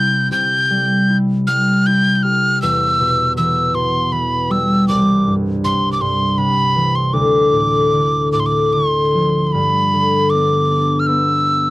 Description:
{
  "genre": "celtic folk, Celtic slow air",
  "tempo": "78 BPM",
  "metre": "3/4",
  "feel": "rubato",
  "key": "unclear",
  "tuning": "A4 = 441 Hz",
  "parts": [
    { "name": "breathy tin whistle", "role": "melody", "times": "0.0-11.7 s", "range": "B5 to G6", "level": "-16 LUFS", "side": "right 1 dB", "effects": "none" },
    { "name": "concert harp", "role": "accompaniment", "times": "0.0-11.7 s", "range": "C2 to G4", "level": "-16 LUFS", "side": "left 1 dB", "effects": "none" }
  ],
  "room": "light reverb",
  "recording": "dry, close 1970s-style studio recording",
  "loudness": "-13 LUFS",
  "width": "side -18 dB against mid",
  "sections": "0.0-9.5 A section; 9.5-11.7 B section",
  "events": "none",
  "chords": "0.0 C; 2.6 Em; 4.9 C; 7.1 Dm; 9.5 G",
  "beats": "| 0.31 1.09 1.86 | 2.62 3.37 4.12 | 4.88 5.63 6.38 | 7.14 7.92 8.73 | 9.54 10.31 11.07"
}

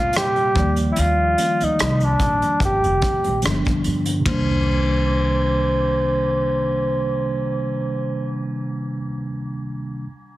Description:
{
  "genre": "R&B, neo-soul",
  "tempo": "73 BPM",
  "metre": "4/4",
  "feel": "swing 55% on 16ths",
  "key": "C minor",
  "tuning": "A4 = 438 Hz",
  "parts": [
    { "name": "breathy tenor saxophone", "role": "melody", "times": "0.0-8.3 s", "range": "D4 to C5", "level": "-21 LUFS", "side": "equal", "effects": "low-pass filter" },
    { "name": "mellow tine electric piano", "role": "accompaniment", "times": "0.0-10.1 s", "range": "Bb2 to D5", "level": "-24 LUFS", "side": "equal", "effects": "medium stereo tremolo, low-pass filter" },
    { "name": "upright bass", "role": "bass", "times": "0.0-9.0 s", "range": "F1 to G2", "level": "-24 LUFS", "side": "equal", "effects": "none" },
    { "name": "vintage brush drum kit", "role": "drums", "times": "0.1-4.5 s", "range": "hi-hat, kick drum, ride cymbal, rim click, toms", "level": "-26 LUFS", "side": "equal", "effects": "none" }
  ],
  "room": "light reverb, studio ambience",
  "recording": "heavily compressed radio sound, multiband compression",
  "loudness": "-18 LUFS",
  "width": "side -16 dB against mid",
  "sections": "0.0-4.3 A section; 4.3-7.5 B section",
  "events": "filter sweep 0.0-4.3",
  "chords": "0.0 Csus2; 0.6 Ebmaj9; 3.4 G7; 4.3 Cm9",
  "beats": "0.14 | 0.97 1.79 2.61 3.43 | 4.25 5.08 5.90 6.72"
}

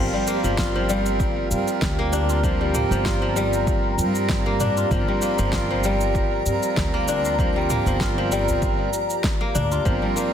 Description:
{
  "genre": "organic downtempo",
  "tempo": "97 BPM",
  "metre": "4/4",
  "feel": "swing 54% on 16ths",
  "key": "G minor",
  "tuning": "A4 = 439 Hz",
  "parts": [
    { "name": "hand-pumped harmonium", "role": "accompaniment", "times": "0.0-10.3 s", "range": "G3 to Bb4", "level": "-26 LUFS", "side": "right 4 dB", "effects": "sidechain pumping, tape echo" },
    { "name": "granular cloud pad", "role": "sustained chords", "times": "0.0-10.3 s", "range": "G4 to Bb5", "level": "-29 LUFS", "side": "right 2 dB", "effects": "built-in reverb, sidechain pumping" },
    { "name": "kora", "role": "arpeggios", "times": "0.0-10.3 s", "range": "F3 to Bb4", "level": "-25 LUFS", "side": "left 4 dB", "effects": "tape echo" },
    { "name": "upright bass", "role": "bass", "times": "0.0-10.0 s", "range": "G1 to G2", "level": "-26 LUFS", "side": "equal", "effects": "sidechain pumping" },
    { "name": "bronze singing bowl", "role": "texture", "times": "0.0-10.3 s", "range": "G5", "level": "-40 LUFS", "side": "left 6 dB", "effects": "none" },
    { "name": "deep house drum kit", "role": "drums", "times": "0.3-10.3 s", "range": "cabasa, snare drum, toms", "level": "-29 LUFS", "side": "equal", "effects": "none" },
    { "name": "electronic kick drum", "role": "drums", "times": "0.6-10.0 s", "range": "none", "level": "-26 LUFS", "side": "equal", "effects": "none" },
    { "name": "udu", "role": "percussion", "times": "7.9-8.6 s", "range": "none", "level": "-30 LUFS", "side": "right 1 dB", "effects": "none" }
  ],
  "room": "moderate recital hall reverb, RT60 1.6 s, small room ambience",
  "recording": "dense, heavily limited modern master",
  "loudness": "-19 LUFS",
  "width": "side -9 dB against mid",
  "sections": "0.0-10.3 A section",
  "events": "none",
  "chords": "0.0 Gm7",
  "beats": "0.58 1.20 1.82 | 2.44 3.06 3.67 4.29 | 4.91 5.53 6.15 6.77 | 7.39 8.01 8.62 9.24 | 9.86"
}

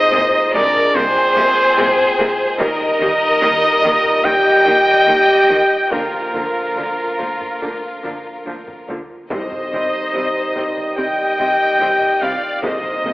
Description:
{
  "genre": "cinematic, epic orchestral film score",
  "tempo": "72 BPM",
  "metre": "4/4",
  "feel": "straight",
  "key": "C minor",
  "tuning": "A4 = 440 Hz",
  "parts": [
    { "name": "rich symphonic violin section", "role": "melody", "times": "0.0-13.1 s", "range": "F4 to Eb5", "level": "-22 LUFS", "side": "left 1 dB", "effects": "none" },
    { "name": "rich symphonic violin section", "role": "second line", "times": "0.0-13.1 s", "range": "Bb4 to G5", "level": "-23 LUFS", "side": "equal", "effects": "none" },
    { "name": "clear trombone section", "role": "sustained chords", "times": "0.0-13.1 s", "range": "Bb2 to Bb3", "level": "-28 LUFS", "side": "right 1 dB", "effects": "none" },
    { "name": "dark French horn section", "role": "sustained chords", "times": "0.0-13.1 s", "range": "Bb3 to G4", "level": "-23 LUFS", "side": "equal", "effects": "none" },
    { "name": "clear trumpet", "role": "stabs", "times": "0.0-13.1 s", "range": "Bb4 to G5", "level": "-17 LUFS", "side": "equal", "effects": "none" },
    { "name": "timpani", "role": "percussion", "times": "0.0-0.5, 9.3-13.1 s", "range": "C3", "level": "-36 LUFS", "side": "equal", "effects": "none" },
    { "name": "dark symphonic viola section", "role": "accompaniment", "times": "0.1-13.1 s", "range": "F3 to C4", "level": "-27 LUFS", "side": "equal", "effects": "none" },
    { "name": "rich symphonic cello section", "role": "bass", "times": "0.1-13.1 s", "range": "C3 to Eb3", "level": "-28 LUFS", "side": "equal", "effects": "none" },
    { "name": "warm symphonic double bass section", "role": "bass", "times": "0.1-13.1 s", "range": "C2 to Eb2", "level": "-37 LUFS", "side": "right 1 dB", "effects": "none" },
    { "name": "taiko ensemble", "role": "drums", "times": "0.5-13.1 s", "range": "none", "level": "-32 LUFS", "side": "equal", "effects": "none" }
  ],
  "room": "wet scoring stage reverb, RT60 2.0 s",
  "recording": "telephone sound",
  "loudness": "-13 LUFS",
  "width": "side -18 dB against mid",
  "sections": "0.0-13.1 A section",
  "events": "none",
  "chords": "0.0 Abadd9/C; 2.6 Eb; 5.9 Bb/D; 9.3 Cm",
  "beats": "0.12 0.95 1.77 | 2.60 3.42 4.25 5.08 | 5.92 6.76 7.61 8.46 | 9.30 10.14 10.97 11.80 | 12.63"
}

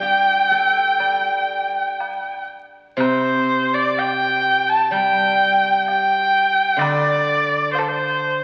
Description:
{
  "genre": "chinese traditional, Chinese chamber ensemble",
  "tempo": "62 BPM",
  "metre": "4/4",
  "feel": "rubato",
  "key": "unclear",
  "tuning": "A4 = 439 Hz",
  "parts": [
    { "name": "clear erhu", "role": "melody", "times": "0.0-8.4 s", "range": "A4 to A5", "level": "-20 LUFS", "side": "equal", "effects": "none" },
    { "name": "large dizi", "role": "second line", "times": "0.0-8.4 s", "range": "C5 to A5", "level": "-25 LUFS", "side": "equal", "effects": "none" },
    { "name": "steel-string zither", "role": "accompaniment", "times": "0.0-8.4 s", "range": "C3 to D5", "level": "-28 LUFS", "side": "equal", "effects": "none" },
    { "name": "woodblock", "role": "percussion", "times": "0.0-8.0 s", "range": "none", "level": "-35 LUFS", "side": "equal", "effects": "none" }
  ],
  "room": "wet scoring stage reverb, RT60 1.8 s",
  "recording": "very old 78 rpm record, vinyl crackle",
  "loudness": "-18 LUFS",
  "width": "mono",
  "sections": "0.0-3.0 A section; 3.0-8.4 B section",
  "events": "none",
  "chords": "none",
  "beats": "0.02 0.99 1.99 | 2.99 3.96 4.92 5.87 | 6.80 7.74"
}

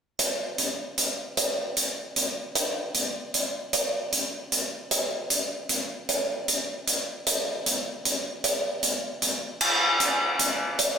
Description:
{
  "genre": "rock",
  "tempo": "51 BPM (dotted quarters)",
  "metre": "6/8",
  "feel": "straight",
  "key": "none",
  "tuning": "none",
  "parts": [
    { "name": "huge arena drum kit", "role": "drums", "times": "0.2-11.0 s", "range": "crash cymbal, hi-hat", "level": "-24 LUFS", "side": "equal", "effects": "none" }
  ],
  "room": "little or no reverb",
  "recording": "none",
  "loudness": "-24 LUFS",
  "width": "side -6 dB against mid",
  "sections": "0.2-9.6 A section; 9.6-11.0 B section",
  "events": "none",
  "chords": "none",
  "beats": "| 0.19 1.37 | 2.55 3.73 | 4.91 6.08 | 7.26 8.43 | 9.61 10.78"
}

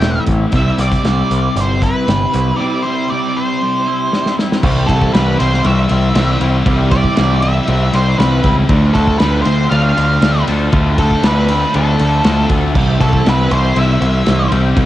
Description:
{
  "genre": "rock, shoegaze and dream pop",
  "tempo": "118 BPM",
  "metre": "4/4",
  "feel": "straight",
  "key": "C major",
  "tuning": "A4 = 437 Hz",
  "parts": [
    { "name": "octave-fuzz lead guitar", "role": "melody", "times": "0.0-14.5 s", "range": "A4 to G5", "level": "-19 LUFS", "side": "right 1 dB", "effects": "distortion, cassette tape, tape echo" },
    { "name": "twangy electric guitar", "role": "arpeggios", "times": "0.0-14.9 s", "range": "F3 to A4", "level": "-28 LUFS", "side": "left 6 dB", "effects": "ensemble chorus, cassette tape, tape echo" },
    { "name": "distorted electric guitar", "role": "riff", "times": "0.0-14.9 s", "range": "A2 to D4", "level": "-23 LUFS", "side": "equal", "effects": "distortion, cassette tape" },
    { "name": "raw garage guitar", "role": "riff", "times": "0.0-14.9 s", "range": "C3 to F4", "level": "-22 LUFS", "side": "right 6 dB", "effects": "overdrive, reverse reverb, cassette tape" },
    { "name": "thick fuzz guitar", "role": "riff", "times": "0.0-14.9 s", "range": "A2 to D4", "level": "-22 LUFS", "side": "left 6 dB", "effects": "distortion, analog chorus, cassette tape" },
    { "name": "growling picked electric bass", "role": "bass", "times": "0.0-14.9 s", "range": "E1 to D2", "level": "-15 LUFS", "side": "equal", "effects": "overdrive" },
    { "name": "loose indie drum kit", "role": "drums", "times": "0.0-14.9 s", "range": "crash cymbal, hi-hat, kick drum, ride cymbal, snare drum", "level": "-18 LUFS", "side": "equal", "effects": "cassette tape" }
  ],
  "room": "small room ambience",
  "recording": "home recording on cassette",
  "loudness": "-11 LUFS",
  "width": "side -14 dB against mid",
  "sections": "0.0-4.6 A section; 4.6-14.9 B section",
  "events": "break 2.6-4.6; drum fill 4.1-4.6",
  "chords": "0.0 Am7; 0.5 C; 8.7 Dm7; 12.8 C",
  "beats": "0.03 | 0.54 1.05 1.56 2.08 | 2.59 3.10 3.61 4.12 | 4.63 5.14 5.66 6.16 | 6.67 7.18 7.69 8.20 | 8.70 9.21 9.72 10.22 | 10.73 11.23 11.74 12.25 | 12.75 13.26 13.76 14.26 | 14.77"
}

